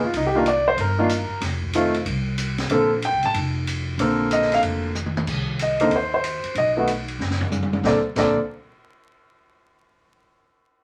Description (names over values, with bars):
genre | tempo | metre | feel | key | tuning
jazz piano trio | 187 BPM | 4/4 | swing 64% on 8ths | Bb major | A4 = 440 Hz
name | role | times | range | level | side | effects
clear upright piano | melody | 0.0-8.4 s | D3 to A5 | -22 LUFS | equal | none
upright bass | bass | 0.0-8.4 s | F1 to Eb2 | -30 LUFS | equal | none
open jazz drum kit | drums | 0.1-8.3 s | crash cymbal, hi-hat, kick drum, ride cymbal, snare drum, toms | -31 LUFS | equal | none
room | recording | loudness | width
wet studio ambience, RT60 0.5 s | vinyl crackle | -22 LUFS | mono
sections
0.0-5.3 A section; 5.3-7.8 B section; 7.8-9.1 C section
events
drum fill 5.0-5.3, 7.2-7.8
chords
0.1 Cm9; 1.4 F5; 2.7 Bbmaj9; 5.3 Cm; 6.6 B5; 7.8 Bbmaj9